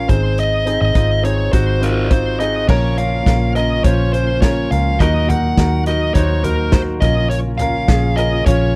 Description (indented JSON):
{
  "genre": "piano-driven pop",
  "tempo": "104 BPM",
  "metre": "4/4",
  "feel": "straight",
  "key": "Bb minor",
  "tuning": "A4 = 441 Hz",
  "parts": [
    { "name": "smooth overdriven lead guitar", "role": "melody", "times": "0.0-8.8 s", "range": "Bb4 to Gb5", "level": "-22 LUFS", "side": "equal", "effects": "none" },
    { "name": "clear grand piano", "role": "accompaniment", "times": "0.0-8.8 s", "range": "Bb2 to Db5", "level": "-24 LUFS", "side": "equal", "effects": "none" },
    { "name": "vintage muted fingered electric bass", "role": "bass", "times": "0.0-8.8 s", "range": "Ab1 to Eb2", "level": "-20 LUFS", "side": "equal", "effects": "none" },
    { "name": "natural country drum kit", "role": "drums", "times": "0.1-8.6 s", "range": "crash cymbal, hi-hat, kick drum, snare drum, toms", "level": "-19 LUFS", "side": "equal", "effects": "none" },
    { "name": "percussive tonewheel organ", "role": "sustained chords", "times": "2.7-8.8 s", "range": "Db3 to Gb4", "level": "-29 LUFS", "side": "equal", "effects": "none" }
  ],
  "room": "little or no reverb",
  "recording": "dry, close 1970s-style studio recording",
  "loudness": "-16 LUFS",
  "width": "mono",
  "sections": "0.0-2.7 A section; 2.7-8.8 B section",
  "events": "none",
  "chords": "0.1 Ab; 2.7 Bbm; 5.0 Ebm; 7.0 Bbm"
}